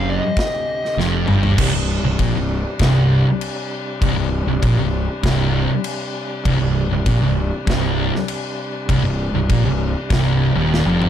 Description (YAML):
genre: stoner and doom metal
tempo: 99 BPM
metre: 4/4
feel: straight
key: C minor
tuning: A4 = 440 Hz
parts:
  - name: fuzz lead guitar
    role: melody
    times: 0.0-1.0 s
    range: Eb5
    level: -24 LUFS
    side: left 1 dB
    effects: distortion, ping-pong delay
  - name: bright tonewheel organ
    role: sustained chords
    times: 0.0-11.1 s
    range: C3 to G4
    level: -28 LUFS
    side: left 1 dB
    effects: slow rotary speaker, overdrive
  - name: thick fuzz guitar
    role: riff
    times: 0.0-11.1 s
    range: C2 to Bb2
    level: -21 LUFS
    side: left 6 dB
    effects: distortion
  - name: thick fuzz guitar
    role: riff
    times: 0.0-11.1 s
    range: C2 to Bb2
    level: -20 LUFS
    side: right 7 dB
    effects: distortion
  - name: fuzz fingered electric bass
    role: bass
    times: 0.0-11.1 s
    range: C1 to Bb1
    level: -23 LUFS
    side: equal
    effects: overdrive
  - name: big rock drum kit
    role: drums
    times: 0.4-11.1 s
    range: crash cymbal, kick drum, snare drum, toms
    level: -24 LUFS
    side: equal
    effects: none
room: little or no reverb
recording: dark, warm production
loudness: -16 LUFS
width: side -10 dB against mid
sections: 0.0-1.6 A section; 1.6-11.1 B section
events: drum fill 1.0-1.6, 10.7-11.1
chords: 0.0 Cm; 1.6 C5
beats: 0.37 0.98 | 1.59 2.20 2.80 3.41 | 4.02 4.63 5.24 5.84 | 6.45 7.06 7.67 8.28 | 8.88 9.49 10.10 10.71